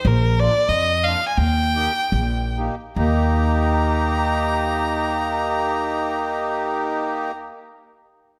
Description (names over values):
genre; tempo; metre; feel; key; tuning
alpine folk, alpine dance band; 66-95 BPM; 2/4; straight; Eb major; A4 = 438 Hz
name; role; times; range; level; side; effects
clear fiddle; melody; 0.0-7.3 s; Bb4 to Bb5; -26 LUFS; equal; none
upright bass; bass; 0.0-7.5 s; Bb1 to F2; -23 LUFS; equal; none
accordion; accompaniment; 0.4-7.3 s; Bb3 to G4; -25 LUFS; equal; none
room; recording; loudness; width
moderate concert hall reverb, RT60 1.8 s; none; -21 LUFS; mono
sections
0.0-3.0 A section; 3.0-6.6 B section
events
slowing down 0.1-3.0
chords
0.1 Bb; 1.4 Eb